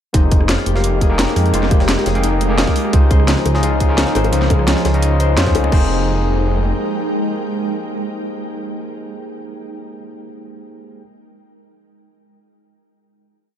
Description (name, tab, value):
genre	liquid drum and bass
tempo	172 BPM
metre	4/4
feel	straight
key	F minor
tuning	A4 = 440 Hz
part	overdriven tine electric piano	accompaniment	0.1-11.0 s	Ab3 to G5	-23 LUFS	left 1 dB	ping-pong delay
part	ethereal airy pad	sustained chords	0.6-9.3 s	F3 to G5	-24 LUFS	right 1 dB	ensemble chorus, built-in reverb
part	concert harp	arpeggios	0.1-8.4 s	Eb4 to C5	-25 LUFS	left 6 dB	ping-pong delay
part	swelling detuned saw bass	bass	0.1-6.7 s	F1 to F2	-17 LUFS	equal	none
part	drum and bass drum kit	drums	0.1-5.8 s	crash cymbal, hi-hat, rim click, snare drum	-22 LUFS	equal	overdrive
part	electronic kick drum	drums	0.1-5.8 s	none	-14 LUFS	equal	overdrive
part	jungle sampler-style drum kit	drums	0.1-5.6 s	hi-hat, snare drum	-27 LUFS	equal	overdrive, high-pass filter on hats, high-pass filter on snare
part	bongos	percussion	3.5-5.7 s	none	-27 LUFS	left 6 dB	none
room	light reverb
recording	dark, warm production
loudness	-14 LUFS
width	side -10 dB against mid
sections	0.1-5.7 drop; 5.7-8.5 final chord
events	drop 0.1-5.7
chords	0.1 Fm11; 2.9 Dbmaj9; 5.7 Fm11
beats	| 0.14 0.49 0.84 1.19 | 1.54 1.89 2.23 2.58 | 2.93 3.28 3.63 3.98 | 4.33 4.68 5.03 5.38 | 5.72 6.07 6.42 6.77 | 7.12 7.47 7.82 8.16